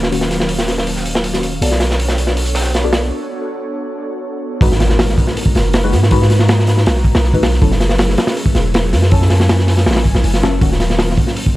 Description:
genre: drum and bass, jungle.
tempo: 160 BPM.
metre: 4/4.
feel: straight.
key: G# minor.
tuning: A4 = 440 Hz.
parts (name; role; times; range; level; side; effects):
airy breathy pad; sustained chords; 0.0-11.6 s; D#3 to A#5; -23 LUFS; equal; chorus.
long sustained 808-style bass; bass; 0.0-11.2 s; D#1 to G#2; -15 LUFS; equal; tube saturation.
crunchy breakbeat drum kit; drums; 0.0-11.6 s; hi-hat, kick drum, snare drum; -15 LUFS; equal; high-pass filter on kick, high-pass filter on hats, high-pass filter on snare, high-pass filter on room.
deep mellow chord stab; stabs; 0.1-10.7 s; D#3 to D5; -23 LUFS; left 3 dB; chorus, phaser, dub echo.
crunchy breakbeat drum kit; drums; 0.1-3.0 s; hi-hat, shaker, snare drum; -27 LUFS; right 2 dB; high-pass filter on hats, high-pass filter on snare, high-pass filter on perc, high-pass filter on room.
impact; sound effects; 4.7-6.1 s; none; -26 LUFS; equal; none.
room: small room ambience.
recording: none.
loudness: -12 LUFS.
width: side -17 dB against mid.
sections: 0.0-4.6 A section; 4.6-11.6 B section.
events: filter sweep on synth stab 0.0-4.6; break 3.1-4.6; drop 4.6-11.6; impact 4.6-6.1.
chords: 0.0 D#m7; 1.6 Bm7; 4.6 G#m7; 7.6 F#m7; 10.6 D#m7.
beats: | 0.12 0.49 0.87 1.24 | 1.62 1.99 2.37 2.74 | 3.12 3.49 3.87 4.24 | 4.62 4.99 5.37 5.74 | 6.12 6.49 6.87 7.24 | 7.62 7.99 8.37 8.74 | 9.12 9.49 9.87 10.24 | 10.62 10.99 11.37.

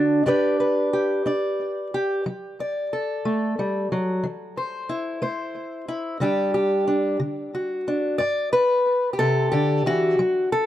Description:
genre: folk, solo fingerstyle acoustic guitar.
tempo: 60 BPM (dotted quarters).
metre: 6/8.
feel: straight.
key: G major.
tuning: A4 = 440 Hz.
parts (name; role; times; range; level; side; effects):
fingerpicked acoustic archtop guitar; solo; 0.0-10.7 s; G2 to D5; -21 LUFS; equal; tape echo.
room: light reverb.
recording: dark, warm production.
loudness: -21 LUFS.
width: side -12 dB against mid.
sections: 0.3-8.2 A section; 8.2-10.7 B section.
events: none.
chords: 0.3 G; 2.3 D/F#; 4.2 Am/E; 6.2 Dsus4; 7.2 D; 8.2 G5.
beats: | 0.27 1.27 | 2.27 3.26 | 4.24 5.22 | 6.20 7.20 | 8.21 9.21 | 10.20.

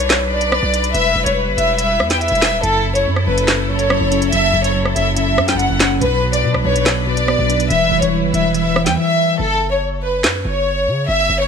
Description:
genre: hip hop, drill.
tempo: 142 BPM.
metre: 4/4.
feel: half-time.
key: F# phrygian.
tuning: A4 = 442 Hz.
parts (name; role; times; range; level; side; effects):
warm studio violin section; melody; 0.0-11.5 s; A4 to G5; -17 LUFS; left 1 dB; none.
clear symphonic string section; sustained chords; 0.0-9.4 s; F#3 to B4; -23 LUFS; left 3 dB; none.
hard-hitting 808-style bass; bass; 0.0-11.5 s; D1 to C#3; -22 LUFS; equal; none.
drill drum kit; drums; 0.0-10.3 s; handclaps, hi-hat, rim click, snare drum; -19 LUFS; right 1 dB; vintage 12-bit sampler grit.
mellow tine electric piano; accompaniment; 2.6-9.4 s; F#2 to E5; -19 LUFS; equal; medium stereo tremolo.
room: light reverb, digital ambience.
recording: none.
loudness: -14 LUFS.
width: side -6 dB against mid.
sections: 0.0-9.4 A section; 9.4-11.5 B section.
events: silent gap 9.0-9.4; break 9.4-11.5.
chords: 0.0 Bm; 0.9 Em; 2.6 F#m7; 6.0 Bm; 7.7 Em; 9.4 F#5.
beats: 0.10 0.52 | 0.94 1.37 1.79 2.21 | 2.63 3.06 3.48 3.90 | 4.33 4.75 5.17 5.59 | 6.01 6.44 6.86 7.28 | 7.71 8.13 8.55 8.97 | 9.39 9.82 10.24 10.66 | 11.09.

